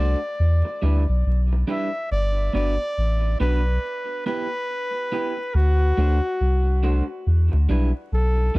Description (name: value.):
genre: roots reggae.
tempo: 70 BPM.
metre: 4/4.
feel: swing 61% on 16ths.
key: unclear.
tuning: A4 = 440 Hz.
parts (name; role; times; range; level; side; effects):
clear flugelhorn; melody; 0.0-8.6 s; F#4 to E5; -27 LUFS; equal; tape echo.
electric guitar at the edge of break-up; accompaniment; 0.0-8.6 s; G3 to C5; -29 LUFS; right 2 dB; tape echo.
soft dub sub bass; bass; 0.0-8.6 s; G1 to E2; -19 LUFS; equal; none.
room: light reverb, studio ambience.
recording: vinyl crackle.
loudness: -20 LUFS.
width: side -22 dB against mid.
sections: 0.0-8.6 A section.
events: none.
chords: 0.4 Em7; 2.1 Gmaj7; 3.8 Em/B; 5.5 D7; 7.3 Em7.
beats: 0.40 1.26 | 2.11 2.97 3.83 4.69 | 5.54 6.40 7.26 8.12.